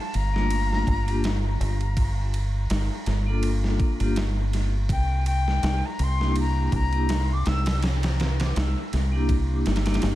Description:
trip hop; 82 BPM; 4/4; swing 55% on 16ths; G dorian; A4 = 441 Hz
jazz flute; melody; 0.0-7.8 s; G5 to E6; -32 LUFS; left 4 dB; dub echo
deep dub fingered electric bass; bass; 0.1-10.2 s; G1 to C2; -24 LUFS; equal
dusty soul sampler-style drum kit; drums; 0.1-10.2 s; kick drum, ride cymbal, snare drum; -28 LUFS; equal; dub echo
vibraphone with medium hard mallets; accompaniment; 0.3-10.0 s; A3 to A4; -31 LUFS; left 2 dB; tremolo, tape echo
little or no reverb; echo-heavy mix; -22 LUFS; side -15 dB against mid
0.0-10.2 A section
0.0 Gm7; 4.9 C9
0.51 1.24 | 1.97 2.70 3.43 4.16 | 4.89 5.63 6.36 7.09 | 7.82 8.55 9.29 10.02

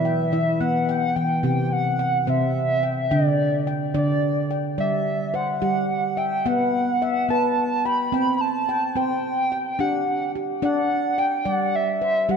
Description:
world meditative, meditative tuned percussion; 72 BPM (dotted quarters); 6/8; straight; A4 = 437 Hz
pure sine lead; melody; 0.0-12.4 s; D5 to B5; -23 LUFS; equal; chorus, ping-pong delay
handpan; arpeggios; 0.0-12.4 s; C3 to G5; -23 LUFS; equal
wet lush hall reverb, RT60 1.9 s; dark, warm production; -20 LUFS; side -6 dB against mid
0.0-1.4 A section; 1.4-12.4 B section
0.0 Em; 1.4 C; 3.1 Dsus4; 4.8 G5; 6.5 B5; 8.1 C5; 9.8 D; 11.5 G5
0.61 | 1.45 2.28 | 3.12 3.95 | 4.79 5.62 | 6.46 7.29 | 8.13 8.96 | 9.79 10.63 | 11.46 12.29

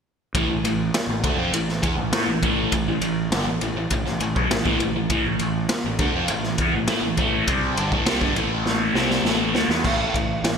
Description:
hard rock; 101 BPM; 4/4; straight; A minor; A4 = 440 Hz
overdriven electric guitar; riff; 0.3-10.6 s; G2 to E4; -22 LUFS; equal; phaser
fuzz fingered electric bass; bass; 0.3-10.6 s; G1 to A2; -29 LUFS; equal; overdrive
raw garage drum kit; drums; 0.3-10.6 s; crash cymbal, kick drum, ride cymbal, snare drum; -24 LUFS; equal; gated reverb
light reverb, small room ambience; bright 1980s-style digital production; -20 LUFS; side -6 dB against mid
0.3-9.8 A section
drum fill 8.7-9.8
0.3 Am; 9.8 A5
| 0.35 0.94 1.54 2.13 | 2.73 3.32 3.91 4.51 | 5.10 5.69 6.29 6.88 | 7.47 8.06 8.66 9.25 | 9.84 10.44

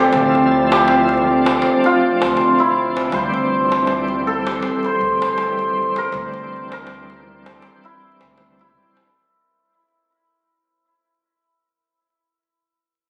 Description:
trip hop; 80 BPM; 4/4; swing 58% on 16ths; A4 = 441 Hz
cimbalom; melody; 0.0-12.1 s; C4 to C5; -20 LUFS; equal; tape echo
bright tonewheel organ; accompaniment; 0.0-9.1 s; E3 to G4; -26 LUFS; equal; overdrive, chorus vibrato, slow rotary speaker, tremolo
dark analog pad; sustained chords; 0.0-9.1 s; C4 to C5; -24 LUFS; equal; chorus, vintage 12-bit sampler grit
upright bass; bass; 0.0-8.9 s; A1 to D2; -33 LUFS; equal
wind-like tuned noise texture; texture; 0.1-9.1 s; D5; -36 LUFS; equal
darbuka; percussion; 0.1-9.1 s; -28 LUFS; equal
light reverb, small room ambience; recorded on a phone in the room, studio reverb, vinyl crackle; -17 LUFS; mono
0.0-9.1 A section
fade-out 1.1-9.1
0.0 Dm9; 3.1 Cadd9/D
| 0.12 0.88 1.62 2.38 | 3.12 3.88 4.62 5.38 | 6.12 6.88 7.62 8.38

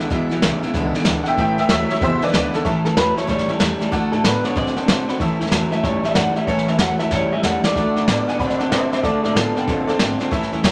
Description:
rockabilly; 188 BPM; 4/4; swing 63% on 8ths; A major; A4 = 440 Hz
honky-tonk upright piano; accompaniment; 0.0-10.7 s; G#3 to B5; -28 LUFS; equal
picked steel-string acoustic guitar; accompaniment; 0.0-10.7 s; E2 to F#4; -29 LUFS; equal
electric guitar through a small old amp; riff; 0.0-10.7 s; E2 to C4; -24 LUFS; equal
upright bass; bass; 0.0-10.7 s; E1 to B2; -33 LUFS; equal
jazz brush drum kit; drums; 0.0-10.7 s; hi-hat, kick drum, snare drum; -24 LUFS; equal
electric guitar through a small old amp; melody; 2.9-10.0 s; A4 to F#5; -25 LUFS; equal
moderate large studio reverb, RT60 1.0 s; -19 LUFS; mono
0.0-2.7 A section; 2.7-10.7 B section
honky-tonk piano solo 0.0-2.7; drum fill 7.1-7.8
0.0 E; 1.4 A; 2.0 E; 2.7 A; 3.9 D; 5.2 A; 7.8 D; 9.0 Dm7
| 0.11 0.43 0.75 1.06 | 1.38 1.70 2.02 2.34 | 2.65 2.97 3.29 3.61 | 3.93 4.25 4.57 4.89 | 5.20 5.52 5.84 6.16 | 6.48 6.80 7.12 7.44 | 7.76 8.08 8.40 8.72 | 9.04 9.36 9.68 10.00 | 10.32 10.64

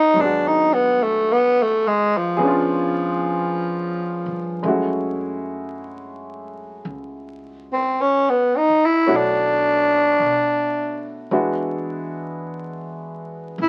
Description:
jazz ballad; 54 BPM; 4/4; swing 66% on 8ths; A4 = 440 Hz
growling tenor saxophone; melody; 0.0-13.7 s; E#3 to E4; -20 LUFS; equal
clear grand piano; accompaniment; 0.0-13.6 s; E3 to C#5; -27 LUFS; equal
upright bass; bass; 0.0-13.7 s; G#1 to B2; -38 LUFS; equal
moderate studio reverb, RT60 0.5 s; very old 78 rpm record, vinyl crackle; -20 LUFS; mono
0.0-13.7 A section
tenor saxophone solo 0.0-13.7
0.2 G#m7b5; 2.4 C#7b9; 4.6 F#m7; 9.1 Bm11; 11.3 E9
| 0.15 1.27 2.40 3.51 | 4.63 5.73 6.84 7.95 | 9.07 10.19 11.31 12.45 | 13.58

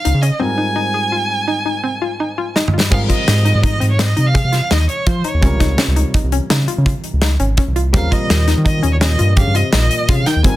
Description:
progressive instrumental, band music in an uneven meter; 167 BPM; 7/4; straight; Ab major; A4 = 440 Hz
rich violin; melody; 0.0-10.6 s; C5 to Ab5; -21 LUFS; right 2 dB
dark baby grand piano; accompaniment; 0.0-10.6 s; Ab2 to Eb5; -26 LUFS; equal
hollow square pluck; arpeggios; 0.0-10.5 s; C4 to Ab4; -23 LUFS; left 2 dB; chorus, tape echo
round analog bass; bass; 0.1-10.6 s; Ab1 to F3; -15 LUFS; equal
big rock drum kit; drums; 0.1-10.5 s; crash cymbal, hi-hat, kick drum, snare drum, toms; -17 LUFS; equal
trombone with bucket mute; second line; 7.9-10.6 s; Bb2 to Eb3; -24 LUFS; left 4 dB
little or no reverb; dense, heavily limited modern master; -13 LUFS; side -15 dB against mid
0.0-2.9 A section; 2.9-10.6 B section
break 0.4-2.9; grand piano fill 2.4-2.9; drum fill 2.6-2.9
0.4 Ab6; 2.9 Abmaj7; 5.4 Dbadd9; 7.9 Eb7
0.05 | 0.41 0.77 1.13 1.48 1.84 2.20 2.56 | 2.92 3.28 3.63 3.99 4.35 4.71 5.07 | 5.43 5.79 6.14 6.50 6.86 7.22 7.58 | 7.94 8.29 8.65 9.01 9.37 9.73 10.09 | 10.45

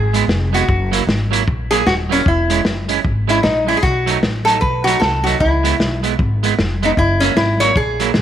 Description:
ska; 153 BPM; 4/4; swing 61% on 8ths; A4 = 442 Hz
lap resonator guitar; melody; 0.0-8.2 s; C#4 to C#5; -17 LUFS; left 1 dB
upright bass; bass; 0.0-8.2 s; D#1 to C#2; -20 LUFS; left 1 dB
electric guitar at the edge of break-up; accompaniment; 0.1-8.2 s; F#3 to E4; -21 LUFS; right 14 dB; tape echo
vintage drum kit; drums; 0.1-8.2 s; hi-hat, kick drum, snare drum; -20 LUFS; left 1 dB
light reverb, studio reverb; 1960s-style stereo; -13 LUFS; side -10 dB against mid
0.0-8.2 A section
resonator guitar played with a steel bar solo 0.0-8.2
0.0 C#m7 (rootless); 0.7 F#7; 2.3 E6; 3.8 B7; 5.4 C#m7; 7.0 F#7
0.29 | 0.69 1.08 1.47 1.87 | 2.26 2.65 3.05 3.44 | 3.83 4.22 4.62 5.01 | 5.40 5.79 6.19 6.58 | 6.97 7.36 7.75 8.15

